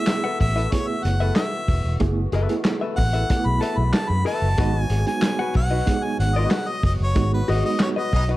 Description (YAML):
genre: funk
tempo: 93 BPM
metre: 4/4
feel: straight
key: F# dorian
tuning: A4 = 440 Hz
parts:
  - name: clear harmonica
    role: melody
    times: 0.0-8.3 s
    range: B4 to B5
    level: -27 LUFS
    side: equal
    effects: none
  - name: percussive tonewheel organ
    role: sustained chords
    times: 0.0-8.4 s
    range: E3 to F#4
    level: -35 LUFS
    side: equal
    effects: slow rotary speaker, overdrive
  - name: reed electric piano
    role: stabs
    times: 0.0-8.4 s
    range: G#3 to A4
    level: -28 LUFS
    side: right 4 dB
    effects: fast tremolo, analog delay
  - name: vintage drum kit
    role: drums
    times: 0.1-8.4 s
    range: handclaps, hi-hat, kick drum, snare drum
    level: -24 LUFS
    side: equal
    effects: none
  - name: cowbell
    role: percussion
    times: 0.1-8.0 s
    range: none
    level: -36 LUFS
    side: equal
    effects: none
  - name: hollow-body jazz guitar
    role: accompaniment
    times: 0.2-8.4 s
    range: F#4 to F#5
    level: -29 LUFS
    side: left 5 dB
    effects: none
  - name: vintage muted fingered electric bass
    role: bass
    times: 0.4-8.4 s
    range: E1 to F#2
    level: -22 LUFS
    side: equal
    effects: none
  - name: warm horn section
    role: second line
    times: 8.1-8.2 s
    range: B3 to D#5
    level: -29 LUFS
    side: equal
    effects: none
room: light reverb, small room ambience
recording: dark, warm production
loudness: -19 LUFS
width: side -17 dB against mid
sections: 0.0-8.4 A section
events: harmonica solo 0.0-8.4; band accent 7.2-8.4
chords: 0.0 F#m11; 4.6 G#m7